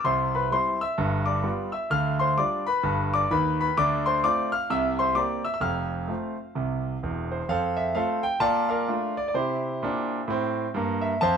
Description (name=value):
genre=jazz, stride piano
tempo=129 BPM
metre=4/4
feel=swing 62% on 8ths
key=F major from 3.8 s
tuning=A4 = 441 Hz
part: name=clear concert grand piano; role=solo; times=0.0-11.4 s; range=E1 to F6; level=-23 LUFS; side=equal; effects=none
room=wet studio reverb, RT60 0.9 s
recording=band playing live in one room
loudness=-23 LUFS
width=side -7 dB against mid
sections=0.0-7.5 A section; 7.5-11.4 B section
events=none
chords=0.1 C; 1.0 G7; 1.9 G7/D; 3.8 Dm7; 4.7 C7; 5.6 F; 8.4 Bbmaj7; 9.3 C7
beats=| 0.05 0.52 0.98 1.45 | 1.91 2.38 2.84 3.31 | 3.77 4.24 4.70 5.17 | 5.63 6.09 6.56 7.02 | 7.49 7.95 8.42 8.88 | 9.35 9.81 10.28 10.74 | 11.21